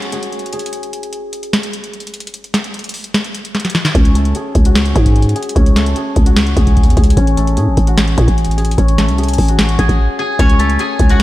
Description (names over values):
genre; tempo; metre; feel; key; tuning
hip hop, trap; 149 BPM; 4/4; half-time; unclear; A4 = 439 Hz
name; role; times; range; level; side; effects
steel-string zither; melody; 0.0-11.2 s; A3 to G#5; -19 LUFS; left 2 dB; low-pass filter, diffuse ambient delay
booming analog drum machine; drums; 0.0-11.2 s; hi-hat, kick drum, snare drum; -14 LUFS; equal; none
growling 808-style bass; bass; 3.9-11.2 s; A1 to A2; -14 LUFS; equal; none
room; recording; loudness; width
light reverb; faint mains hum; -11 LUFS; side -16 dB against mid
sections
0.0-11.2 A section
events
break 0.0-3.9, 10.0-10.4; filter sweep on guzheng 0.0-10.4; drum fill 3.5-3.9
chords
0.0 C#5; 0.7 N.C.; 3.9 C#5; 7.2 A; 10.4 C#5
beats
0.33 | 0.73 1.13 1.53 1.94 | 2.34 2.74 3.14 3.55 | 3.95 4.35 4.75 5.16 | 5.56 5.96 6.37 6.77 | 7.17 7.57 7.98 8.38 | 8.78 9.18 9.59 9.99 | 10.39 10.79 11.20